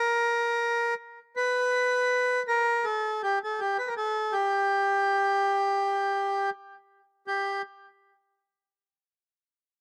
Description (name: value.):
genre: arabic.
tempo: 81 BPM.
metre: 4/4.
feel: straight.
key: unclear.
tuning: A4 = 444 Hz.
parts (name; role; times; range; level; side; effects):
accordion; solo; 0.0-7.6 s; G4 to B4; -27 LUFS; equal; slapback echo.
room: little or no reverb.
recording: recorded outdoors, with no room sound.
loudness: -27 LUFS.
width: mono.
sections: 0.0-7.3 A section; 7.3-9.8 B section.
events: none.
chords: none.